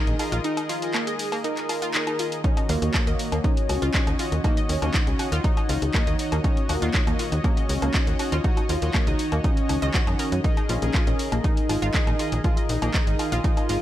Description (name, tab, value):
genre	melodic techno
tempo	120 BPM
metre	4/4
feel	straight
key	Eb minor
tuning	A4 = 438 Hz
part	fat analog lead	melody	0.0-13.8 s	Bb3 to Bb4	-30 LUFS	equal	phaser, sidechain pumping, tape echo
part	analog pluck	arpeggios	0.0-13.8 s	Bb3 to Eb5	-31 LUFS	equal	chorus, sidechain pumping, dub echo
part	analog synth brass	stabs	0.0-13.8 s	Gb4 to Eb5	-32 LUFS	left 2 dB	chorus, sidechain pumping, dub echo
part	analog drone	drone	0.2-13.8 s	Eb3	-38 LUFS	equal	none
part	tight sequencer bass	bass	0.1-13.8 s	Ab1 to Gb2	-25 LUFS	equal	sidechain pumping
part	punchy analog drum machine	drums	0.1-13.8 s	handclaps, hi-hat, woodblock	-30 LUFS	left 1 dB	none
part	electronic kick drum	drums	2.4-13.5 s	none	-23 LUFS	equal	none
room	digital ambience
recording	none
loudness	-21 LUFS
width	side -13 dB against mid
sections	0.0-13.8 A section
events	break 0.4-2.4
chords	0.0 Bb7sus4; 2.4 Ebm7; 10.4 Bb7sus4